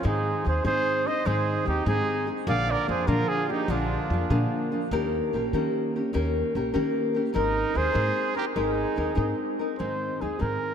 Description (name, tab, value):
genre	mexican folk, mariachi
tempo	98 BPM (dotted quarters)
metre	6/8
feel	rubato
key	Ab major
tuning	A4 = 440 Hz
part	mellow trumpet	melody	0.0-4.7, 7.4-10.7 s	F4 to F5	-28 LUFS	right 2 dB	analog delay
part	bright trumpet	second line	0.0-4.7, 7.4-9.4 s	D4 to D5	-33 LUFS	right 6 dB	none
part	nylon-string guitar	accompaniment	0.0-10.7 s	Ab2 to Bb4	-27 LUFS	left 2 dB	none
part	upright bass	bass	0.0-10.6 s	Ab1 to Eb3	-29 LUFS	equal	none
room	wet cathedral reverb, RT60 4.5 s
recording	dreamy mix soaked in reverb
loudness	-24 LUFS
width	side -8 dB against mid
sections	0.0-9.8 A section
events	none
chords	0.0 Ab; 2.5 Bb7; 4.9 Eb7; 7.4 Abadd9; 9.8 Ab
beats	| 0.05 0.66 | 1.26 1.87 | 2.47 3.08 | 3.69 4.30 | 4.92 5.53 | 6.14 6.75 | 7.35 7.95 | 8.56 9.18 | 9.80 10.42